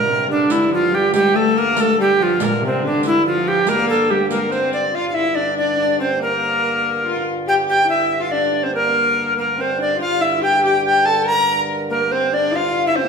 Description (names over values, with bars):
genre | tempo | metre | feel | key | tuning
medieval dance | 142 BPM | 3/4 | straight | G dorian | A4 = 442 Hz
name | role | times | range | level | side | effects
bright reedy tenor recorder | melody | 0.0-13.1 s | C4 to Bb5 | -16 LUFS | right 1 dB | none
rich viola da gamba | second line | 0.0-13.1 s | Bb2 to Bb4 | -22 LUFS | left 3 dB | none
pedal harmonium | drone | 0.0-13.1 s | G2 to D3 | -29 LUFS | right 2 dB | none
riq | percussion | 0.5-4.8 s | none | -27 LUFS | right 5 dB | none
room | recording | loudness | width
wet large studio reverb, RT60 1.2 s | band playing live in one room | -15 LUFS | side -5 dB against mid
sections
0.0-4.9 A section; 4.9-13.1 B section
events
none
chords
none